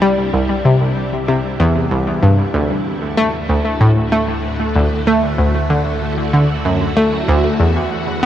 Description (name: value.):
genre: ambient, sequencer-driven space music.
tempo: 95 BPM.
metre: 4/4.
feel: straight.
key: unclear.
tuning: A4 = 440 Hz.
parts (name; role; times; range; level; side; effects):
phased string machine; sustained chords; 0.0-8.3 s; C3 to F#4; -24 LUFS; equal; ensemble chorus, phaser.
analog pluck; riff; 0.0-8.3 s; C2 to A3; -14 LUFS; equal; chorus, analog delay.
round analog bass; bass; 0.0-8.3 s; C2 to E2; -27 LUFS; equal; none.
room: wet huge ambient reverb, RT60 8.1 s.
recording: worn, warbling old tape, cassette tape, warbly pitch drift.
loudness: -13 LUFS.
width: side -11 dB against mid.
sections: 0.0-8.3 A section.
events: fade-in on analog synth bass 0.0-8.3.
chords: 0.0 C; 2.5 D; 7.6 E5.